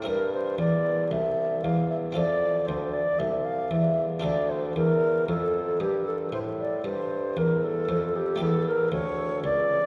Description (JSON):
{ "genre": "classical, baroque-style sonata movement with continuo", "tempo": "58 BPM", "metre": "4/4", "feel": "rubato", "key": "unclear", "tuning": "A4 = 439 Hz", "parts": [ { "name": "buff-stop harpsichord", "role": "accompaniment", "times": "0.0-9.9 s", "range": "C2 to Bb4", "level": "-33 LUFS", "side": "equal", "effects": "none" }, { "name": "warm bassoon", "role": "bass", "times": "0.0-9.8 s", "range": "C2 to A2", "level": "-33 LUFS", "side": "equal", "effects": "none" }, { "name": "mellow baroque flute", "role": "melody", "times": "0.1-9.9 s", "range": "G4 to F5", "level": "-29 LUFS", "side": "equal", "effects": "none" } ], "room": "wet cathedral reverb, RT60 6.3 s", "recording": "recorded in a church or concert hall, vinyl crackle, faint mains hum", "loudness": "-26 LUFS", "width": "mono", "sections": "0.0-9.9 A section", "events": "none", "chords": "0.1 C7; 2.2 F; 4.2 Dm; 8.4 A7", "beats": "| 0.07 1.11 2.16 3.20 | 4.24 5.29 6.33 7.37 | 8.40 9.43" }